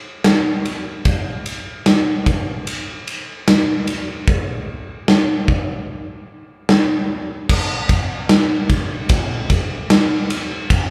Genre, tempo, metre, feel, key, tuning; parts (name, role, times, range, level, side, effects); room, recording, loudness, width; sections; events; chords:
rock; 75 BPM; 4/4; straight
big rock drum kit; drums; 0.2-10.9 s; crash cymbal, kick drum, ride cymbal, snare drum; -19 LUFS; equal
light reverb; band playing live in one room; -18 LUFS; mono
0.0-7.5 A section; 7.5-10.9 B section
build-up 0.0-7.5